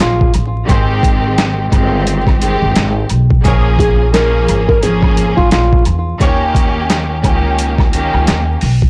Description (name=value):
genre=hip hop, boom-bap hip-hop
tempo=87 BPM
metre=4/4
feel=swing 59% on 16ths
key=Bb dorian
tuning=A4 = 440 Hz
part: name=flamenco guitar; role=melody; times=0.0-5.8 s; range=F4 to Bb4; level=-19 LUFS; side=equal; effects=high-pass filter, low-pass filter, digital delay
part: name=clear studio string section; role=accompaniment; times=0.0-8.6 s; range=Eb3 to Ab4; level=-19 LUFS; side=equal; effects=cassette tape, high-pass filter, low-pass filter
part: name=upright bass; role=bass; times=0.0-8.9 s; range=G1 to E2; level=-18 LUFS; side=equal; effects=tube saturation
part: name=boom bap sampler-style drum kit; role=drums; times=0.0-8.9 s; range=handclaps, hi-hat, kick drum, snare drum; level=-16 LUFS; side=equal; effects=none
part: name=maracas and woodblock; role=percussion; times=0.0-8.8 s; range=none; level=-32 LUFS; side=equal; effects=none
part: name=warm horn section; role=stabs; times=0.7-6.4 s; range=C4 to Db5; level=-25 LUFS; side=equal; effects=high-pass filter, low-pass filter, digital delay
room=little or no reverb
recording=blown-out, overdriven recording, vinyl crackle, overdrive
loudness=-13 LUFS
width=mono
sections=0.0-8.9 A section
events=none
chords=0.0 Bbm7; 0.7 Abmaj7; 3.4 Bbm7; 6.2 Eb7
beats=0.00 | 0.69 1.38 2.07 2.76 | 3.45 4.14 4.83 5.52 | 6.21 6.90 7.59 8.28